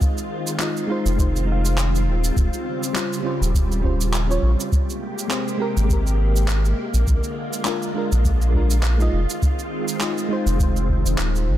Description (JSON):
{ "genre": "sunset chillout", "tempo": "102 BPM", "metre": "4/4", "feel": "swing 56% on 16ths", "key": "unclear", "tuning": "A4 = 439 Hz", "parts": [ { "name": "soft string machine", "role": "sustained chords", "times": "0.0-11.6 s", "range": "C3 to G4", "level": "-27 LUFS", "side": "equal", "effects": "phaser, ensemble chorus" }, { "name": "electronic cabasa and handclaps", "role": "drums", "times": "0.0-11.5 s", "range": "none", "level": "-28 LUFS", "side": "right 2 dB", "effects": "none" }, { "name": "electronic kick drum", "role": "drums", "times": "0.0-11.0 s", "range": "none", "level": "-21 LUFS", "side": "equal", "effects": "none" }, { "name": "mellow FM electric piano", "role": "accompaniment", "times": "0.6-11.6 s", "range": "G3 to F5", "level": "-27 LUFS", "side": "moving between left 5 dB and right 3 dB", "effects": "chorus, auto-pan, vintage 12-bit sampler grit, tape echo" }, { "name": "round analog bass", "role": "bass", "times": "1.1-11.6 s", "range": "Eb1 to Bb1", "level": "-19 LUFS", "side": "equal", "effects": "none" } ], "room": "little or no reverb", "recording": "dense, heavily limited modern master", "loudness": "-19 LUFS", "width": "side -13 dB against mid", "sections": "0.0-11.6 A section", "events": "none", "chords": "0.0 Fm7; 2.4 Eb13; 4.7 Abmaj9; 6.8 Bb7; 9.1 Fm7", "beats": "| 0.01 0.60 1.18 1.77 | 2.36 2.95 3.54 4.13 | 4.71 5.30 5.89 6.48 | 7.07 7.66 8.24 8.83 | 9.42 10.01 10.60 11.18" }